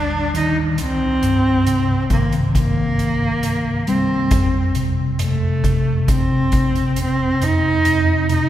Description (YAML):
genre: pop ballad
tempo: 68 BPM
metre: 4/4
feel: straight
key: unclear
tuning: A4 = 443 Hz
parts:
  - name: rich cello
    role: melody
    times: 0.0-8.5 s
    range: A3 to Eb4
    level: -20 LUFS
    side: right 1 dB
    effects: none
  - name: mellow tine electric piano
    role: accompaniment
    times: 0.0-8.5 s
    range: C2 to G3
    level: -19 LUFS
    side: equal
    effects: medium stereo tremolo
  - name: downlifter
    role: sound effects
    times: 0.0-4.3 s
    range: none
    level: -40 LUFS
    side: equal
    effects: none
  - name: soft-mallet drum kit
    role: drums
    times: 0.3-8.5 s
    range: hi-hat, kick drum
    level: -24 LUFS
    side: equal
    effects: none
room: wet church reverb, RT60 3.6 s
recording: recorded in a church or concert hall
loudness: -16 LUFS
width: side -12 dB against mid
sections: 0.0-8.5 A section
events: none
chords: 0.0 Ebmaj7; 0.8 Cm7; 4.3 F7(no3)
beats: | 0.79 1.67 2.55 3.44 | 4.32 5.20 6.08 6.96 | 7.85